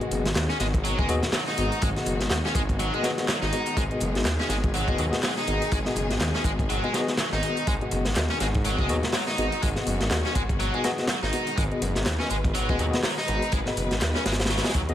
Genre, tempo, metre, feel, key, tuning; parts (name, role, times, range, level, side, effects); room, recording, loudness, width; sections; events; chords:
breakbeat, breaks; 123 BPM; 4/4; swing 58% on 16ths; G# minor pentatonic; A4 = 439 Hz
clear symphonic string section; sustained chords; 0.0-14.9 s; D#3 to B4; -34 LUFS; left 1 dB; sidechain pumping
tine electric piano; stabs; 0.0-14.9 s; B3 to D#5; -31 LUFS; left 3 dB; medium tremolo, tape echo
house drum kit; drums; 0.0-14.9 s; handclaps, hi-hat; -36 LUFS; equal
detuned saw bass; bass; 0.1-14.9 s; F#1 to D#2; -28 LUFS; equal
crunchy breakbeat drum kit; drums; 0.1-14.9 s; hi-hat, kick drum, snare drum; -28 LUFS; equal
biting overdriven guitar; riff; 0.5-14.8 s; F#3 to D#4; -30 LUFS; equal; spring reverb, tape echo
light reverb, small room reverb; vinyl crackle; -23 LUFS; side -11 dB against mid
0.0-14.9 A section
0.0 G#m7